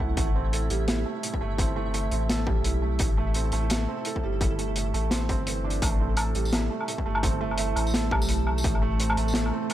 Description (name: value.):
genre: half-time drum and bass.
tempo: 170 BPM.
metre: 4/4.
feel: swing 59% on 16ths, half-time.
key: unclear.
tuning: A4 = 440 Hz.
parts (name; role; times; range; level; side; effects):
felt-muted upright piano; arpeggios; 0.0-9.7 s; A2 to A4; -31 LUFS; right 6 dB; tape echo.
saturated sub bass; bass; 0.0-9.5 s; G1 to C2; -28 LUFS; left 1 dB; none.
electronic kick drum; drums; 0.0-8.7 s; none; -28 LUFS; left 1 dB; distortion.
pulsing gated texture; texture; 0.0-9.7 s; A3 to F#5; -38 LUFS; right 2 dB; chorus, built-in reverb.
crunchy breakbeat drum kit; drums; 0.2-9.7 s; hi-hat, snare drum, tambourine, woodblock; -29 LUFS; equal; none.
dark analog pad; sustained chords; 6.8-9.7 s; A3 to A5; -35 LUFS; right 2 dB; chorus, phaser, sidechain pumping.
room: light reverb.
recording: none.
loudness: -24 LUFS.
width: side -12 dB against mid.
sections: 0.0-9.7 A section.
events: none.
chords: 0.0 A5.